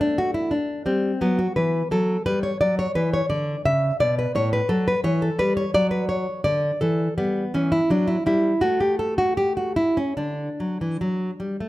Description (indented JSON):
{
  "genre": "classical, baroque-style dance for nylon-string guitar",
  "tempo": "71-88 BPM",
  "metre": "4/4",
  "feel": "rubato",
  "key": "D major",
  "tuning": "A4 = 440 Hz",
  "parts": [
    { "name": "nylon-string guitar", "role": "solo", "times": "0.0-11.7 s", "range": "A2 to E5", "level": "-20 LUFS", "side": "equal", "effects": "none" }
  ],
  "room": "light reverb",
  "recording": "close, detailed microphones",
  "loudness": "-20 LUFS",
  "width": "side -16 dB against mid",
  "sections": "0.0-11.7 A section",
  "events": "none",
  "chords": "0.0 D; 1.6 E7(no3); 4.4 A5; 5.7 D/F#; 7.2 Em; 8.6 N.C.; 10.2 D",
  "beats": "0.18 0.86 | 1.56 2.25 2.95 3.65 | 4.35 5.04 5.74 6.45 | 7.17 7.89 8.61 9.36 | 10.18 11.01"
}